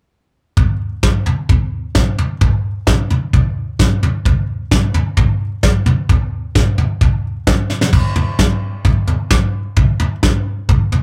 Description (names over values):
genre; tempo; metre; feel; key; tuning
folk; 130 BPM; 4/4; straight; none; none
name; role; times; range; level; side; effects
soft brush drum kit; drums; 0.6-11.0 s; crash cymbal, kick drum, snare drum, toms; -16 LUFS; equal; none
room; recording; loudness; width
moderate booth ambience, RT60 0.2 s; rough rehearsal-room recording, warm saturation; -16 LUFS; mono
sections
0.6-7.9 A section; 7.9-11.0 B section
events
drum fill 7.7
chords
none